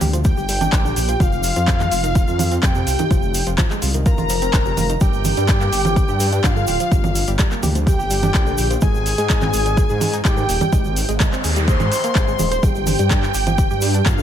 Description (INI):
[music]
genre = melodic techno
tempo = 126 BPM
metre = 4/4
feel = straight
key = G phrygian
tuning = A4 = 440 Hz
[part]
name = woody wave-folded pluck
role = arpeggios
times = 0.0-14.2 s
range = C3 to C6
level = -27 LUFS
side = right 1 dB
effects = chorus, sidechain pumping, ping-pong delay
[part]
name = swelling detuned saw bass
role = bass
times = 0.0-14.2 s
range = D1 to Ab2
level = -21 LUFS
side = equal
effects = sidechain pumping
[part]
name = deep house drum kit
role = drums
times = 0.0-14.2 s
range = congas, handclaps, hi-hat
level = -24 LUFS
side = right 2 dB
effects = overdrive
[part]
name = tube shaker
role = percussion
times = 0.0-14.2 s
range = none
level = -32 LUFS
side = right 3 dB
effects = none
[part]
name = expressive synth lead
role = melody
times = 0.2-14.2 s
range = F4 to C5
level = -24 LUFS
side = left 1 dB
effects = wide subtle chorus, sidechain pumping, ping-pong delay
[part]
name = big bright polysynth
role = second line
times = 0.2-14.2 s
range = F5 to C6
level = -27 LUFS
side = right 1 dB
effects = sidechain pumping, ping-pong delay
[part]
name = electronic kick drum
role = drums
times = 0.2-14.2 s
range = none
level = -18 LUFS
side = equal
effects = overdrive
[part]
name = noise sweep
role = sound effects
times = 11.0-12.6 s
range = none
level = -28 LUFS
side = left 2 dB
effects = none
[sound]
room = little or no reverb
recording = none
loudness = -15 LUFS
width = side -10 dB against mid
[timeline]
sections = 0.0-14.2 A section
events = noise sweep 11.0-12.6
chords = 0.0 Gm; 1.2 F5; 5.0 Gm; 8.8 Ab; 12.6 G5